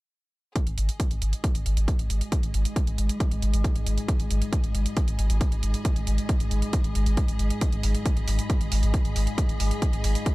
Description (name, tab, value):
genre	driving peak-time techno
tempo	136 BPM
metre	4/4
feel	straight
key	G# minor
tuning	A4 = 440 Hz
part	metallic inharmonic drone	drone	1.4-10.3 s	G#2 to G#3	-33 LUFS	left 1 dB	chorus, built-in reverb, phaser, sidechain pumping
part	electronic hi-hat	drums	0.6-10.3 s	none	-35 LUFS	right 4 dB	none
part	electronic kick drum	drums	0.6-10.3 s	none	-25 LUFS	equal	none
part	bright studio string section	texture	0.6-10.3 s	G#4 to B5	-41 LUFS	left 1 dB	sidechain pumping
part	saturated sub bass	bass	0.7-10.1 s	G#1	-26 LUFS	equal	overdrive, sidechain pumping, low-pass filter
room	little or no reverb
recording	bright 1980s-style digital production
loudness	-23 LUFS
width	side -20 dB against mid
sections	0.6-10.3 A section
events	fade-in on string section 0.6-10.3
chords	0.6 G#5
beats	| 0.56 1.00 1.44 1.88 | 2.32 2.76 3.20 3.64 | 4.08 4.53 4.97 5.41 | 5.85 6.29 6.73 7.17 | 7.61 8.06 8.50 8.94 | 9.38 9.82 10.26